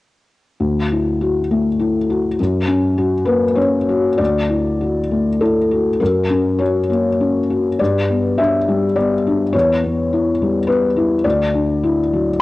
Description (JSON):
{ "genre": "neoclassical minimalist piano", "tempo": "101 BPM", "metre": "3/4", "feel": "uneven beats, rubato", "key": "D major", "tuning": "A4 = 441 Hz", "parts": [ { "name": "felt-muted upright piano", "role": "solo", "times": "0.6-12.4 s", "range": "D2 to E5", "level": "-15 LUFS", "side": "left 2 dB", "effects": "cassette tape" } ], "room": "light reverb, studio reverb", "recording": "home recording on cassette, nothing above 10.3 kHz", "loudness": "-15 LUFS", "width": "side -18 dB against mid", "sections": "0.6-4.2 A section; 4.2-12.4 B section", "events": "none", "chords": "0.6 Dadd9; 2.4 F#; 4.2 Dadd9; 6.0 F#; 7.8 G; 9.5 Em; 11.2 Dadd9" }